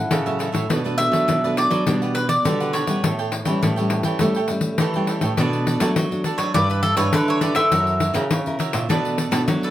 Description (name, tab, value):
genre	samba and choro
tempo	102 BPM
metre	4/4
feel	straight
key	B minor from 5.4 s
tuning	A4 = 440 Hz
part	mandolin	melody	0.0-9.7 s	A4 to F#5	-22 LUFS	equal	plate reverb
part	nylon-string guitar	accompaniment	0.0-9.7 s	A2 to B4	-26 LUFS	left 1 dB	none
part	nylon-string guitar	bass	0.0-9.7 s	F#2 to B3	-24 LUFS	right 1 dB	none
part	cavaquinho	accompaniment	0.1-9.7 s	D4 to G5	-28 LUFS	right 5 dB	none
part	pandeiro	percussion	0.1-9.7 s	none	-24 LUFS	left 3 dB	none
room	moderate studio reverb, RT60 0.6 s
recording	none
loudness	-18 LUFS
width	side -13 dB against mid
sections	0.0-5.4 A section; 5.4-9.7 B section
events	mandolin solo 5.4-9.7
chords	0.0 F#m7/A; 0.7 Bm7; 1.9 Gmaj7/B; 3.0 A7; 5.4 Bm7; 6.6 G6; 7.7 F#7; 8.9 Bm7